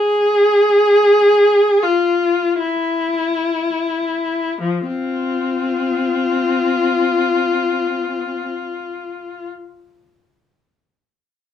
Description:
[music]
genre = classical, free, expressive piece for unaccompanied viola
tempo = 25-49 BPM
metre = 3/4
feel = rubato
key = F minor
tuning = A4 = 440 Hz
[part]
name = rich viola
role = solo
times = 0.0-9.5 s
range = F3 to Ab4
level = -15 LUFS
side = left 2 dB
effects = none
[sound]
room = light reverb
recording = dark, warm production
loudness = -15 LUFS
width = side -9 dB against mid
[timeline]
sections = 0.0-4.6 A section; 4.6-10.0 B section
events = slowing down 0.0-4.6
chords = none

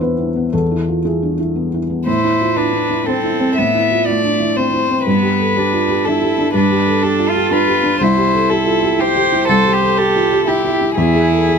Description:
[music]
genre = neoclassical piano and strings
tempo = 121 BPM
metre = 3/4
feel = rubato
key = A minor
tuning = A4 = 439 Hz
[part]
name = felt-muted upright piano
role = accompaniment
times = 0.0-11.6 s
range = C2 to E5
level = -16 LUFS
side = equal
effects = none
[part]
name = rich violin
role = melody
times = 2.1-11.6 s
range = G4 to E5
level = -18 LUFS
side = left 4 dB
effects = tape echo
[part]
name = warm cello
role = second line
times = 2.1-11.6 s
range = A3 to C5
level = -18 LUFS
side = right 5 dB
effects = none
[sound]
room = light reverb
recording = close, detailed microphones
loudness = -13 LUFS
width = side -6 dB against mid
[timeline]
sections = 0.0-2.1 A section; 2.1-11.6 A section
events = none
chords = 0.0 E; 2.1 Am; 5.1 Gadd9; 8.0 C; 11.0 E

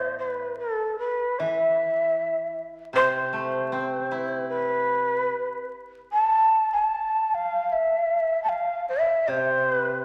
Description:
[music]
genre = japanese traditional, Japanese chamber music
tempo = 72-80 BPM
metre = 2/4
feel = rubato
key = A hirajoshi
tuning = A4 = 440 Hz
[part]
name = breathy mellow shakuhachi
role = melody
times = 0.0-10.0 s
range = A4 to A5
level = -25 LUFS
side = equal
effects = none
[part]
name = koto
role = accompaniment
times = 0.0-5.7, 9.3-10.0 s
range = A2 to E4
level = -35 LUFS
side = equal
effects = none
[sound]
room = wet concert hall reverb, RT60 2.3 s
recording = vinyl crackle, faint mains hum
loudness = -25 LUFS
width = mono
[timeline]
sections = 0.0-10.0 A section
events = none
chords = none

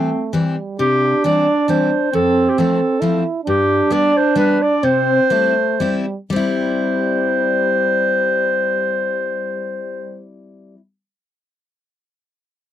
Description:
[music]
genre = alpine folk, alpine dance band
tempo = 113-136 BPM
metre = 3/4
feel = straight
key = C major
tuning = A4 = 440 Hz
[part]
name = dark clarinet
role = melody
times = 0.0-10.2 s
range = C4 to D5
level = -17 LUFS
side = left 1 dB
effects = none
[part]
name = clear euphonium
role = second line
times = 0.0-10.2 s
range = G3 to E4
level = -20 LUFS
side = right 5 dB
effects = none
[part]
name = picked steel-string acoustic guitar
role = accompaniment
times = 0.0-10.8 s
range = F2 to E4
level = -22 LUFS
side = left 3 dB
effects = none
[sound]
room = light reverb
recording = dry, close 1970s-style studio recording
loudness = -15 LUFS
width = side -11 dB against mid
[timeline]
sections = 0.8-6.3 A section; 6.3-9.5 B section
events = slowing down 3.5-6.3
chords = 0.0 C; 2.1 F; 3.5 G; 4.8 C

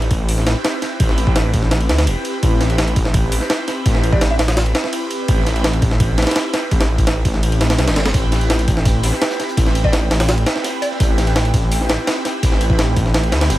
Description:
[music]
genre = drum and bass, jungle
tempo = 168 BPM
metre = 4/4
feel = straight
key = A minor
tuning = A4 = 445 Hz
[part]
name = detuned saw bass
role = bass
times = 0.0-13.6 s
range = E1 to D2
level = -17 LUFS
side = equal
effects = tube saturation
[part]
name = jungle sampler-style drum kit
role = drums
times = 0.0-13.6 s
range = hi-hat, kick drum, ride cymbal, snare drum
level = -18 LUFS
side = equal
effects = none
[part]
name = airy breathy pad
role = sustained chords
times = 0.1-13.6 s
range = C4 to B4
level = -24 LUFS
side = right 1 dB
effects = chorus, phaser, vintage 12-bit sampler grit
[part]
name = mallet-like synth pluck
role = melody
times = 4.1-4.5, 9.8-11.3 s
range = D5 to E5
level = -28 LUFS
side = equal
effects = ensemble chorus, cassette tape, dub echo
[part]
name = crunchy breakbeat drum kit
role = drums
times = 8.1-13.6 s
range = hi-hat, snare drum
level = -31 LUFS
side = left 1 dB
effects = none
[part]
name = wind-like tuned noise texture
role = texture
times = 8.6-13.6 s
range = G5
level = -30 LUFS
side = right 2 dB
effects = built-in reverb
[sound]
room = digital ambience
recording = vinyl crackle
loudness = -14 LUFS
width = side -15 dB against mid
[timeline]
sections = 0.0-13.6 A section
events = none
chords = 0.0 Am7

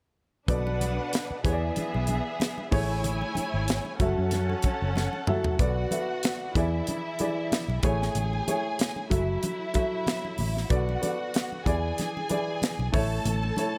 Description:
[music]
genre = lush 1970s-style soul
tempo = 94 BPM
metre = 4/4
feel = swing 54% on 16ths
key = B dorian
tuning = A4 = 440 Hz
[part]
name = warm symphonic string section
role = second line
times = 0.5-13.8 s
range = B3 to A5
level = -36 LUFS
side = equal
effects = none
[part]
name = warm baby grand piano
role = accompaniment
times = 0.5-13.8 s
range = B2 to E5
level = -33 LUFS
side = equal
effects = none
[part]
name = vintage muted fingered electric bass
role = bass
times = 0.5-13.5 s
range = F#1 to F#2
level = -31 LUFS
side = equal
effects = none
[part]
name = tight funk drum kit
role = drums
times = 0.5-13.7 s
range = hi-hat, kick drum, snare drum, toms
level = -31 LUFS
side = equal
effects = none
[part]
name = congas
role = percussion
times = 0.5-13.7 s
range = none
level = -40 LUFS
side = equal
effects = none
[sound]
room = light reverb, small room ambience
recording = none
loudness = -28 LUFS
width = mono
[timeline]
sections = 0.5-5.6 A section; 5.6-13.8 B section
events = drum fill 5.0-5.6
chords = 0.5 Bm7; 1.4 E7; 2.7 Amaj7; 4.0 F#m7; 5.6 Bm7; 6.6 E7; 7.8 Amaj7; 9.1 F#m7; 10.7 Bm7; 11.7 E7; 12.9 A

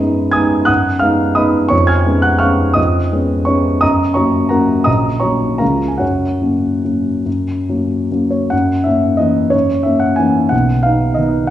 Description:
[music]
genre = classical, piano waltz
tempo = 138-193 BPM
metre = 3/4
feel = rubato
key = F# major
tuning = A4 = 439 Hz
[part]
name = warm concert grand piano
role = solo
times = 0.0-11.5 s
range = A#1 to G#6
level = -12 LUFS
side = equal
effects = none
[sound]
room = wet recital hall reverb, RT60 1.3 s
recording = heard from further back in the room, nothing above 11.0 kHz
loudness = -12 LUFS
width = side -12 dB against mid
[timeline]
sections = 0.0-8.5 A section; 8.5-11.5 B section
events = none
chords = 0.0 G#m7/F#; 1.7 C#7/E#; 3.8 F#; 4.9 F#/A#; 5.6 C#; 6.0 F#; 8.5 F#7; 10.5 B

